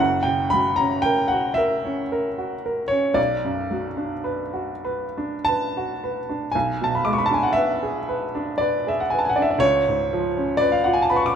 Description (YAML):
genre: classical, romantic nocturne for solo piano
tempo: 46-61 BPM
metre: 3/4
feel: rubato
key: unclear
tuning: A4 = 441 Hz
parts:
  - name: clear upright piano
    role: solo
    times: 0.0-11.4 s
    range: F#1 to D6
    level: -20 LUFS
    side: equal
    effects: none
room: moderate recital hall reverb, RT60 1.5 s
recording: minimal, uncompressed stereo recording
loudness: -20 LUFS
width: side -8 dB against mid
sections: 0.0-11.4 A section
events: none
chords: 0.0 F#7; 3.2 Bm; 6.5 G#dim/B; 9.6 C#7